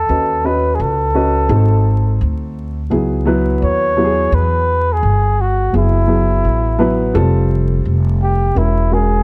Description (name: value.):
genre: hip hop.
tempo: 85 BPM.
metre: 4/4.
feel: swing 64% on 16ths.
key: unclear.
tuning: A4 = 442 Hz.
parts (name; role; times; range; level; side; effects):
breathy flugelhorn; melody; 0.0-9.2 s; E4 to C#5; -20 LUFS; equal; none.
upright bass; bass; 0.0-9.2 s; E1 to E2; -18 LUFS; equal; none.
dark baby grand piano; accompaniment; 0.1-9.2 s; F#3 to D#5; -21 LUFS; equal; none.
room: light reverb.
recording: dark, warm production, vinyl crackle.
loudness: -15 LUFS.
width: mono.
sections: 0.0-9.2 A section.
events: none.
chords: 0.1 D#m7b5; 1.5 G#7b9; 2.9 C#m9; 5.7 F#m9; 7.1 Fadd9; 8.6 E.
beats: | 0.09 0.80 1.50 2.21 | 2.91 3.62 4.32 5.03 | 5.74 6.44 7.15 7.85 | 8.56.